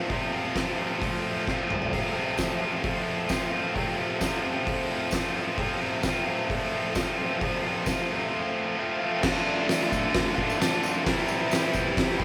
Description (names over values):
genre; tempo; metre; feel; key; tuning
garage rock duo or trio; 131 BPM; 4/4; straight; F major; A4 = 440 Hz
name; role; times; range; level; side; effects
overdriven electric guitar; riff; 0.0-12.2 s; F2 to F4; -29 LUFS; equal; none
oversized low-tuned drum kit; drums; 0.1-12.2 s; crash cymbal, hi-hat, kick drum, snare drum, toms; -32 LUFS; equal; none
tambourine; percussion; 2.4-11.8 s; none; -44 LUFS; equal; none
room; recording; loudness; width
moderate studio ambience, RT60 0.5 s; rough rehearsal-room recording; -27 LUFS; mono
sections
0.0-9.2 A section; 9.2-12.2 B section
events
drum fill 1.5-1.9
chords
0.0 F; 9.2 Dm; 11.1 C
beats
| 0.10 0.55 1.01 1.46 | 1.92 2.38 2.83 3.29 | 3.75 4.20 4.66 5.12 | 5.58 6.03 6.49 6.95 | 7.41 7.86 8.32 8.78 | 9.23 9.69 10.14 10.60 | 11.06 11.51 11.97